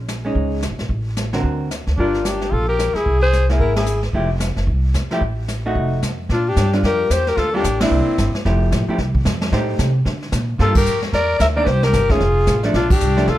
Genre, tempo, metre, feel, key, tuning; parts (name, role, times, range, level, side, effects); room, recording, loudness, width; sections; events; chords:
jazz, small-group swing and bop; 223 BPM; 4/4; swing 61% on 8ths; F major; A4 = 440 Hz
upright bass; bass; 0.0-13.4 s; F1 to D3; -20 LUFS; equal
jazz brush drum kit; drums; 0.1-13.4 s; brushed snare drum, crash cymbal, hi-hat, kick drum, ride cymbal, snare drum; -23 LUFS; equal
vintage hollow-body jazz guitar; accompaniment; 0.2-13.3 s; D3 to C5; -23 LUFS; equal
breathy alto saxophone; melody; 2.0-4.0, 6.3-8.3, 10.6-13.4 s; E4 to E5; -19 LUFS; left 3 dB
growling trumpet; second line; 2.0-4.0, 6.3-8.3, 10.6-13.4 s; C4 to Bb4; -26 LUFS; right 3 dB
light reverb; dark, warm production; -16 LUFS; side -14 dB against mid
0.0-6.3 A section; 6.3-13.4 B section
band accent 3.7, 7.8, 10.7, 12.9
0.0 Bbm11; 0.9 Amadd11; 1.4 D7b13; 2.0 Gm7; 3.1 Caug7; 4.1 Fmaj9; 5.8 F7b9; 6.3 Bb6; 7.4 Gm9; 7.9 C9; 8.4 Fmaj9; 9.5 Am7b5; 10.1 Bb; 10.6 Gm9; 11.7 Cm7; 12.2 Fm6; 12.7 Bbmaj7